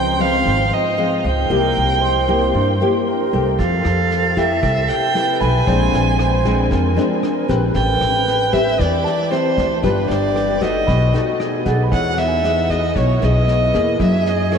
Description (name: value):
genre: bossa nova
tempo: 115 BPM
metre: 4/4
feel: straight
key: C major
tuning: A4 = 440 Hz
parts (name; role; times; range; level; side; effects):
- dark violin; melody; 0.0-14.6 s; B4 to Ab5; -20 LUFS; right 1 dB; ping-pong delay
- breathy mellow concert flute; second line; 0.0-14.6 s; D#4 to C5; -24 LUFS; right 5 dB; none
- nylon-string guitar; accompaniment; 0.0-14.6 s; G2 to B4; -20 LUFS; left 3 dB; analog chorus
- warm grand piano; accompaniment; 0.0-14.0 s; C#5 to C6; -33 LUFS; right 3 dB; none
- upright bass; bass; 0.0-14.6 s; G1 to G2; -20 LUFS; equal; none
- vintage brush drum kit; drums; 3.6-14.6 s; kick drum, rim click, snare drum; -29 LUFS; equal; none
room: wet huge ambient reverb, RT60 8.0 s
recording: dreamy mix soaked in reverb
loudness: -15 LUFS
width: side -6 dB against mid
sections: 0.0-11.9 A section; 11.9-14.6 B section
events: none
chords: 0.0 Dbmaj7; 1.5 C7; 3.6 Fmaj9; 5.7 Bb9; 7.8 Am9; 9.8 G7; 10.9 B7; 11.9 Emaj7; 14.0 F#9